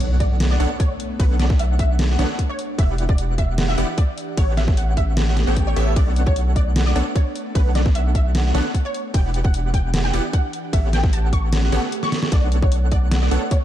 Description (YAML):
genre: future bass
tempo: 151 BPM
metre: 4/4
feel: half-time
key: B minor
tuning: A4 = 442 Hz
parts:
  - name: wide unison pluck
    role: melody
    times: 0.0-13.6 s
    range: B4 to C#6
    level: -29 LUFS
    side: equal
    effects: ensemble chorus, sidechain pumping, digital delay
  - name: airy breathy pad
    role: sustained chords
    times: 0.3-13.6 s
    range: E3 to F#5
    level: -32 LUFS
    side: right 1 dB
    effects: chorus, sidechain pumping
  - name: airy dreamy lead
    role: arpeggios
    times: 0.0-13.4 s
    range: E5 to G5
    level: -34 LUFS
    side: equal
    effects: chorus, sidechain pumping, digital delay
  - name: supersaw stab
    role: riff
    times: 0.0-13.4 s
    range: B3 to G5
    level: -29 LUFS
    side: right 1 dB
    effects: sidechain pumping
  - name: saturated sub bass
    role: bass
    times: 0.0-13.4 s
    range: E1 to B1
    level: -19 LUFS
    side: equal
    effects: sidechain pumping
  - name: dubstep drum kit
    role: drums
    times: 0.0-13.6 s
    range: hi-hat, ride cymbal, snare drum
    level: -26 LUFS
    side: equal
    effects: none
  - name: impact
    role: sound effects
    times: 0.0-1.2 s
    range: none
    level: -31 LUFS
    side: right 1 dB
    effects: none
  - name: electronic kick drum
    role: drums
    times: 0.2-13.6 s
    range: none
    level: -18 LUFS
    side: equal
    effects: none
room: digital ambience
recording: dark, warm production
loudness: -17 LUFS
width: side -12 dB against mid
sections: 0.0-13.6 A section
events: impact 0.0-1.2; break 11.9-12.3; drum fill 12.0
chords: 0.0 Bm9; 2.8 Em9; 4.4 A13; 6.0 Bm9; 9.1 Em9; 10.7 A13; 12.3 Bm9